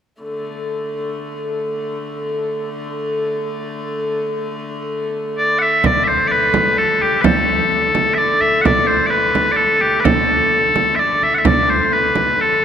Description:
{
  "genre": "medieval dance",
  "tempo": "128 BPM",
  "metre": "3/4",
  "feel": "straight",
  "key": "unclear",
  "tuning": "A4 = 440 Hz",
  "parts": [
    { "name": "warm hurdy-gurdy", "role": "drone", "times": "0.2-12.6 s", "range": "D3 to A3", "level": "-23 LUFS", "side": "left 1 dB", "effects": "none" },
    { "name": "loud bright bagpipes", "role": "melody", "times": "5.4-12.6 s", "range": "G4 to F#5", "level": "-14 LUFS", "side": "left 1 dB", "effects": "none" },
    { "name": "frame drum", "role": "percussion", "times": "5.8-12.6 s", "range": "none", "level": "-19 LUFS", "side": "right 3 dB", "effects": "none" }
  ],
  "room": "wet church reverb, RT60 3.6 s",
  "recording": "none",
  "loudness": "-14 LUFS",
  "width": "side -8 dB against mid",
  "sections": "0.2-5.8 A section; 5.8-12.6 B section",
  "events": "none",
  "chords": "none"
}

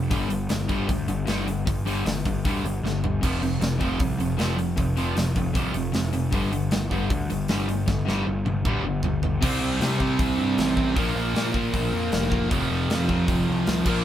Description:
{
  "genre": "punk rock",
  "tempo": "155 BPM",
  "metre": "4/4",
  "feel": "straight",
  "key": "unclear",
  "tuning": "A4 = 438 Hz",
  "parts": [
    { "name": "biting overdriven guitar", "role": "riff", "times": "0.0-14.0 s", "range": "F2 to C4", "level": "-28 LUFS", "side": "right 4 dB", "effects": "none" },
    { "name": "crunchy overdriven guitar", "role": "riff", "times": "0.0-14.0 s", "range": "F2 to C4", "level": "-28 LUFS", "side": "left 5 dB", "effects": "none" },
    { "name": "fuzz picked electric bass", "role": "bass", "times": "0.0-14.0 s", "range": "F1 to C3", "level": "-28 LUFS", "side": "equal", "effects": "overdrive" },
    { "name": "tight metal drum kit", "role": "drums", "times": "0.1-13.9 s", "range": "crash cymbal, hi-hat, kick drum, snare drum, toms", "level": "-28 LUFS", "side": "equal", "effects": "none" },
    { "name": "high-gain distorted guitar", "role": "riff", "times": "9.4-14.0 s", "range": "F2 to C4", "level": "-29 LUFS", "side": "right 1 dB", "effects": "distortion" }
  ],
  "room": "light reverb",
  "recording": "band playing live in one room",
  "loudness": "-22 LUFS",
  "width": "side -11 dB against mid",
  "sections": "0.0-9.4 A section; 9.4-14.0 B section",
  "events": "drum fill 2.8-3.2, 7.9-9.4",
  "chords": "0.1 G5; 3.2 F5; 6.3 G5; 9.4 C5; 11.0 Bb5; 12.5 F5"
}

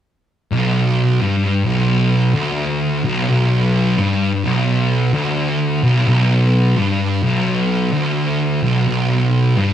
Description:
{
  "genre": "metal",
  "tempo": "86 BPM",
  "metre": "4/4",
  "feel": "swing 64% on 8ths",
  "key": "B minor",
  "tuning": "A4 = 440 Hz",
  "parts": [
    { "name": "thick fuzz guitar", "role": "riff", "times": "0.5-9.7 s", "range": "B1 to G2", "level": "-17 LUFS", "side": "left 3 dB", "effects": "distortion" },
    { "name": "thick fuzz guitar", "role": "riff", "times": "0.5-9.7 s", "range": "B1 to G2", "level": "-18 LUFS", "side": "right 5 dB", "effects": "distortion" }
  ],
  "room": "moderate studio reverb, RT60 0.5 s",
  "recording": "rough rehearsal-room recording",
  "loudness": "-14 LUFS",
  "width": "side -10 dB against mid",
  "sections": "0.5-9.7 A section",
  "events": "none",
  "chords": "0.5 Bm"
}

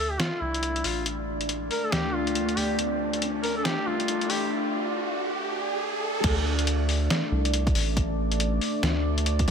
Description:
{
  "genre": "deep dubstep",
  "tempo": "139 BPM",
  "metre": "4/4",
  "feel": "swing 61% on 16ths, half-time",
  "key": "D minor",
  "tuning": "A4 = 440 Hz",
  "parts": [
    { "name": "clear duduk", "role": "melody", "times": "0.0-4.5 s", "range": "E4 to Bb4", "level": "-31 LUFS", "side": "equal", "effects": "dub echo" },
    { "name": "deep dark ambient pad", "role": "sustained chords", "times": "0.0-9.5 s", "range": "A3 to D5", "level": "-30 LUFS", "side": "left 1 dB", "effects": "chorus, built-in reverb" },
    { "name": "soft dub sub bass", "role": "bass", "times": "0.0-9.5 s", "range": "A1 to D2", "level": "-28 LUFS", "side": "equal", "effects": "tube saturation" },
    { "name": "riser", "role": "sound effects", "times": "1.2-6.2 s", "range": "none", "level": "-34 LUFS", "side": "right 2 dB", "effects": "none" },
    { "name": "trip hop sampler-style drum kit", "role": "drums", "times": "0.2-9.5 s", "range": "crash cymbal, hi-hat, snare drum", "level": "-29 LUFS", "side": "left 1 dB", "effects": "none" },
    { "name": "electronic kick drum", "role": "drums", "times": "6.2-9.5 s", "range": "none", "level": "-26 LUFS", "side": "equal", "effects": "overdrive" }
  ],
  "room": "light reverb",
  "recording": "high-pass filter",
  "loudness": "-24 LUFS",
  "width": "side -7 dB against mid",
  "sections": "0.0-6.2 A section; 6.2-9.5 B section",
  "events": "build-up 0.0-6.2; riser 1.2-6.2; drop 6.2-9.5",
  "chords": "0.0 D5"
}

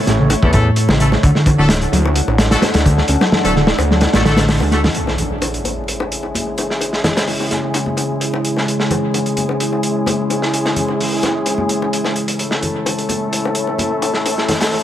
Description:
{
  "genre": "breakbeat, breaks",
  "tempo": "129 BPM",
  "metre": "4/4",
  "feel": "straight",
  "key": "C# phrygian",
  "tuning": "A4 = 439 Hz",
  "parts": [
    { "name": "deep dark ambient pad", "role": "sustained chords", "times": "0.0-14.8 s", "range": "C#3 to F#5", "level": "-22 LUFS", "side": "equal", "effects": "chorus, built-in reverb, vintage 12-bit sampler grit, sidechain pumping" },
    { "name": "fat analog bass", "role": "bass", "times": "0.1-4.9 s", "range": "D1 to E2", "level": "-17 LUFS", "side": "equal", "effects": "tube saturation" },
    { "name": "crunchy breakbeat drum kit", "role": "drums", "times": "0.1-14.8 s", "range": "hi-hat, kick drum, snare drum", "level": "-18 LUFS", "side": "equal", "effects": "high-pass filter on kick, high-pass filter on hats, high-pass filter on snare, high-pass filter on room, analog delay" },
    { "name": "congas and bongos", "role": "percussion", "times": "0.1-14.7 s", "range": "none", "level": "-24 LUFS", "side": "left 2 dB", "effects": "analog delay" },
    { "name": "hollow-body short-scale picked electric bass", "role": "riff", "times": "0.2-4.8 s", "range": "A2 to C#4", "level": "-17 LUFS", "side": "equal", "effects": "analog delay" },
    { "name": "brilliant horn section", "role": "stabs", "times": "0.4-14.8 s", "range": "G#3 to A4", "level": "-22 LUFS", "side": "left 2 dB", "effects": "low-pass filter, analog delay" },
    { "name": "impact", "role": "sound effects", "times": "5.0-6.8 s", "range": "none", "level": "-27 LUFS", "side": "equal", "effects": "none" }
  ],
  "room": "light reverb, small room ambience",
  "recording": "echo-heavy mix, vinyl crackle",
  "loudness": "-14 LUFS",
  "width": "side -11 dB against mid",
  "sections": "0.0-5.0 A section; 5.0-14.8 B section",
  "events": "impact 5.0-6.8; filter sweep on ambient pad 5.0-14.8",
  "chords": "0.0 A; 1.2 D; 5.0 C#m; 12.4 A"
}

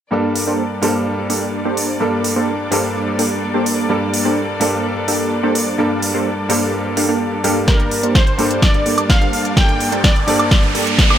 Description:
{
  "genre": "EDM, festival progressive house",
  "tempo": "127 BPM",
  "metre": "4/4",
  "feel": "straight",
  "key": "G minor",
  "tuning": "A4 = 445 Hz",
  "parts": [
    { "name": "bright grand piano", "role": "accompaniment", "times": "0.1-11.2 s", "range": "G2 to A4", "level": "-22 LUFS", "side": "equal", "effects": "sidechain pumping, digital delay" },
    { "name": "muted studio string section", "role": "sustained chords", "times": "0.1-11.2 s", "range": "G3 to A5", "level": "-25 LUFS", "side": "left 2 dB", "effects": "sidechain pumping" },
    { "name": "supersaw stab", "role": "riff", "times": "0.1-11.2 s", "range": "Bb3 to F5", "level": "-19 LUFS", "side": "right 1 dB", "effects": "sidechain pumping, low-pass filter, digital delay" },
    { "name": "big-room dance drum kit", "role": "drums", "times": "0.4-11.2 s", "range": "hi-hat, snare drum, woodblock", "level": "-20 LUFS", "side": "right 1 dB", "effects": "none" },
    { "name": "plucky unison lead", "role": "melody", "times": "7.7-11.2 s", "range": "Bb4 to G5", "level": "-21 LUFS", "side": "equal", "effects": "digital delay" },
    { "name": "electronic kick drum", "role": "drums", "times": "7.7-11.1 s", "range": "none", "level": "-14 LUFS", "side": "equal", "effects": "none" },
    { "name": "riser", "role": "sound effects", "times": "9.3-11.2 s", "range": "none", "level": "-23 LUFS", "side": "right 2 dB", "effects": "none" }
  ],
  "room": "light reverb",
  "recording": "none",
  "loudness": "-14 LUFS",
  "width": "side -10 dB against mid",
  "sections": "0.1-7.7 A section; 7.7-11.2 B section",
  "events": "build-up 7.7-11.2; drum fill 7.7-11.2; filter sweep on supersaw synth 7.7-11.2; riser 9.3-11.2",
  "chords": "0.1 Gmadd9"
}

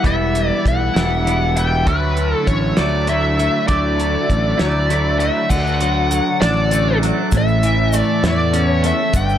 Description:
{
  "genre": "psychedelic rock",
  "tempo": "66 BPM (dotted quarters)",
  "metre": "6/8",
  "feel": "straight",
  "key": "unclear",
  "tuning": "A4 = 438 Hz",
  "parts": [
    { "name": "bluesy overdriven lead guitar", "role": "melody", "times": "0.0-9.4 s", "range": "B4 to G5", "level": "-20 LUFS", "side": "left 2 dB", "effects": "wah, distortion, analog delay" },
    { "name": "bright tonewheel organ", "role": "sustained chords", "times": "0.0-9.4 s", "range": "C#3 to E5", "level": "-31 LUFS", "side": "right 5 dB", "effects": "none" },
    { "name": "clean electric guitar", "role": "riff", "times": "0.0-9.4 s", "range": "G2 to E4", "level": "-20 LUFS", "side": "right 1 dB", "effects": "phaser, double-tracked left and right, analog delay" },
    { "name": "fuzz fingered electric bass", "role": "bass", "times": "0.0-9.4 s", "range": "E1 to E2", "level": "-19 LUFS", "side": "equal", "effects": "overdrive" },
    { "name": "cloth-damped thuddy drum kit", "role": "drums", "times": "0.0-9.3 s", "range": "crash cymbal, hi-hat, kick drum, snare drum", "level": "-21 LUFS", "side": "equal", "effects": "none" },
    { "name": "tube shaker", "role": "percussion", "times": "5.5-9.4 s", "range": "none", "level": "-34 LUFS", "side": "left 6 dB", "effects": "none" }
  ],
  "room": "light reverb, small room ambience",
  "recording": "echo-heavy mix",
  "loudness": "-14 LUFS",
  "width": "side -10 dB against mid",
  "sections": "0.0-5.5 A section; 5.5-9.4 B section",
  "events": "none",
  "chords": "0.0 Em; 1.9 Dadd9; 5.5 D; 7.3 A"
}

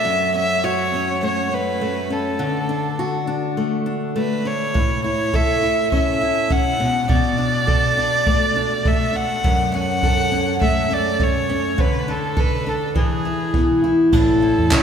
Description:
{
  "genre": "acoustic pop",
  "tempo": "102 BPM",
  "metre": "4/4",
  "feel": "swing 55% on 16ths",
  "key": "unclear",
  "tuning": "A4 = 440 Hz",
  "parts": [
    { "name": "warm violin", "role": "melody", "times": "0.0-14.8 s", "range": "G#4 to F#5", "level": "-21 LUFS", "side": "equal", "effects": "none" },
    { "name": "fingerpicked steel-string acoustic guitar", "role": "accompaniment", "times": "0.0-14.8 s", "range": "F#2 to A4", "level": "-20 LUFS", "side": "left 1 dB", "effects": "none" },
    { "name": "jazz brush drum kit", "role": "drums", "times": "4.8-14.8 s", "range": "crash cymbal, handclaps, kick drum", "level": "-22 LUFS", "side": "right 1 dB", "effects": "none" },
    { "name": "vintage muted fingered electric bass", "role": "bass", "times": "14.1-14.8 s", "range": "A1 to E2", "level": "-22 LUFS", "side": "equal", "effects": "none" }
  ],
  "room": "wet church reverb, RT60 2.7 s",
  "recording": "recorded in a church or concert hall",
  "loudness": "-17 LUFS",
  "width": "side -7 dB against mid",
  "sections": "0.0-14.1 A section",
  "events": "none",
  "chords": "0.1 F#m; 2.4 D; 4.8 A; 6.8 Bm7; 9.4 F#m; 11.8 D5; 13.0 E; 14.1 A"
}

